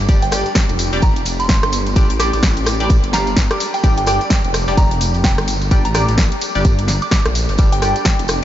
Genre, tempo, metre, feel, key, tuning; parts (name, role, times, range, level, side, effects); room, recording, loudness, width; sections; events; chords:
bass house; 128 BPM; 4/4; swing 59% on 16ths; G minor; A4 = 440 Hz
phased detuned saw bass; bass; 0.0-8.4 s; F1 to Bb1; -20 LUFS; equal; phaser, overdrive, sidechain pumping
band-passed chord stab; stabs; 0.1-8.4 s; G3 to F5; -23 LUFS; left 2 dB; phaser, vintage 12-bit sampler grit, sidechain pumping, ping-pong delay
electronic kick drum; drums; 0.1-8.2 s; -14 LUFS; equal
house drum kit; drums; 0.1-8.4 s; hi-hat, rim click, snare drum; -21 LUFS; equal
jazz brush drum kit; drums; 0.1-8.4 s; hi-hat, snare drum, tambourine; -33 LUFS; left 1 dB
tambourine; percussion; 0.1-8.4 s; -30 LUFS; right 2 dB
soft synth bell; melody; 0.2-7.9 s; G5 to D6; -24 LUFS; right 2 dB; chorus, ping-pong delay
light reverb, studio reverb; nothing above 7.6 kHz; -13 LUFS; side -12 dB against mid
0.0-8.4 A section
0.0 G5